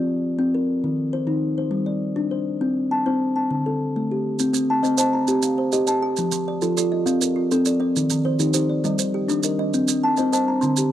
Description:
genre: southern african traditional, mbira-style interlocking cycle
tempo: 135 BPM (dotted quarters)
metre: 12/8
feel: straight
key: C dorian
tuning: A4 = 440 Hz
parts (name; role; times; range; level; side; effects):
- kalimba; arpeggios; 0.0-10.9 s; D3 to Bb5; -20 LUFS; left 1 dB; none
- maracas; percussion; 4.4-10.9 s; none; -26 LUFS; right 10 dB; none
- kalimba; arpeggios; 4.5-10.9 s; Eb3 to C6; -26 LUFS; right 7 dB; none
room: little or no reverb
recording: dry, close 1970s-style studio recording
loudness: -19 LUFS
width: side -11 dB against mid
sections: 0.0-4.4 A section; 4.4-10.9 A section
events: none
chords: 0.0 N.C.; 0.8 Eb5; 1.7 G5; 2.6 Am/C; 3.5 D5; 4.4 Cm; 6.2 F; 8.0 Eb; 8.8 Gm; 9.7 Cm

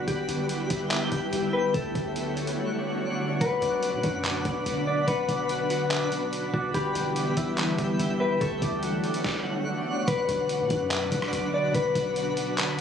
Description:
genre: hip hop, atmospheric cloud-rap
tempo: 144 BPM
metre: 4/4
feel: half-time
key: B minor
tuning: A4 = 439 Hz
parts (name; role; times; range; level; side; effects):
- mellow electric guitar; melody; 0.0-12.8 s; F#4 to D5; -29 LUFS; left 4 dB; tape echo
- ethereal airy pad; sustained chords; 0.0-12.8 s; B2 to C#5; -30 LUFS; equal; ensemble chorus, built-in reverb, sidechain pumping
- warm 808-style bass; bass; 0.0-12.8 s; G1 to B2; -36 LUFS; right 1 dB; none
- twinkling granular texture; texture; 0.0-12.8 s; D4 to G5; -34 LUFS; equal; built-in reverb
- trip hop sampler-style drum kit; drums; 0.1-12.8 s; handclaps, hi-hat, kick drum, rim click, snare drum; -32 LUFS; equal; none
- concert harp; arpeggios; 3.4-11.8 s; G3 to C#6; -33 LUFS; left 1 dB; tape echo
room: little or no reverb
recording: recorded on a phone in the room, studio ambience, compression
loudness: -24 LUFS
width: side -8 dB against mid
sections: 0.0-10.1 A section; 10.1-12.8 B section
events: drums muted 2.6-3.4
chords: 0.1 G6; 1.7 Dmaj7; 3.4 Bm; 6.7 G6; 8.4 Dmaj7; 10.1 Bm

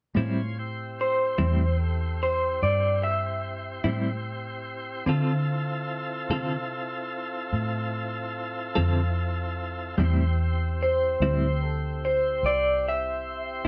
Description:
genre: blues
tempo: 49 BPM (dotted quarters)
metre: 12/8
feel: straight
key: A minor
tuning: A4 = 439 Hz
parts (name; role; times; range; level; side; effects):
- clean electric guitar; accompaniment; 0.1-13.7 s; A2 to A4; -29 LUFS; equal; tremolo
- tonewheel organ; sustained chords; 0.2-13.7 s; C4 to C5; -36 LUFS; equal; slow rotary speaker
- vintage muted fingered electric bass; bass; 0.2-13.7 s; C2 to D3; -30 LUFS; equal; none
- electric guitar through a small old amp; melody; 1.0-13.7 s; A4 to E5; -28 LUFS; equal; tremolo
room: moderate studio reverb, RT60 0.7 s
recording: band playing live in one room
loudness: -27 LUFS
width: mono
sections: 0.2-13.7 A section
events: none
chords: 0.2 Am7; 5.1 Dm7; 10.0 Am7

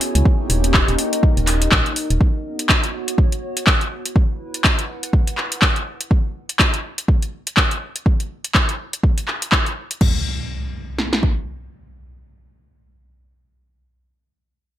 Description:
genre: deep house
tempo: 123 BPM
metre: 4/4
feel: swing 58% on 16ths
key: unclear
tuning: A4 = 440 Hz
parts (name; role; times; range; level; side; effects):
- airy breathy pad; sustained chords; 0.0-2.2 s; A#3 to G#4; -26 LUFS; equal; chorus, vintage 12-bit sampler grit, sidechain pumping
- deep house drum kit; drums; 0.0-10.1 s; crash cymbal, handclaps, hi-hat; -19 LUFS; left 1 dB; overdrive, gated reverb
- warbly tape-like pad; texture; 0.0-6.1 s; B3 to G#5; -28 LUFS; equal; chorus, built-in reverb, sidechain pumping
- organ-like FM bass; bass; 0.2-2.2 s; D#1 to C#2; -18 LUFS; equal; sidechain pumping
- deep house drum kit; drums; 0.3-11.4 s; kick drum, snare drum; -17 LUFS; equal; overdrive
- impact; sound effects; 10.0-14.1 s; none; -28 LUFS; equal; none
room: little or no reverb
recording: bright 1980s-style digital production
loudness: -17 LUFS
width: side -12 dB against mid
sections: 0.0-10.0 A section; 10.0-13.9 B section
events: fade-out on ambient pad 0.0-6.1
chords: 0.3 D#7; 2.2 Bmaj9; 3.9 Esus2; 6.1 N.C.

